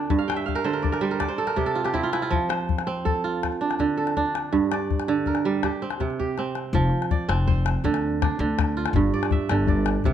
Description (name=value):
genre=west african traditional, West African string and xylophone music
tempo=108 BPM (dotted quarters)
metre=12/8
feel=straight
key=F major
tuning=A4 = 441 Hz
part: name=kora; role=arpeggios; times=0.0-10.1 s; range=G2 to G5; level=-24 LUFS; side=right 4 dB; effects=none
part: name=calabash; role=percussion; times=0.1-10.1 s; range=none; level=-27 LUFS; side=left 7 dB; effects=none
part: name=upright bass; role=bass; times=6.7-10.1 s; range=F1 to D2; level=-24 LUFS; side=left 1 dB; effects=none
room=moderate recital hall reverb, RT60 1.4 s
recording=close, detailed microphones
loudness=-22 LUFS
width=side -10 dB against mid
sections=0.0-6.7 A section; 6.7-10.1 B section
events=kora fill 0.2-2.3; drum fill 6.2-6.7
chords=0.1 G5; 1.2 N.C.; 2.3 F; 3.4 D5; 4.5 Gm; 5.6 C5; 6.7 F5; 7.9 Dm; 9.0 G5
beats=| 0.10 0.66 1.21 1.76 | 2.32 2.87 3.42 3.98 | 4.53 5.09 5.64 6.20 | 6.75 7.30 7.86 8.41 | 8.96 9.51 10.07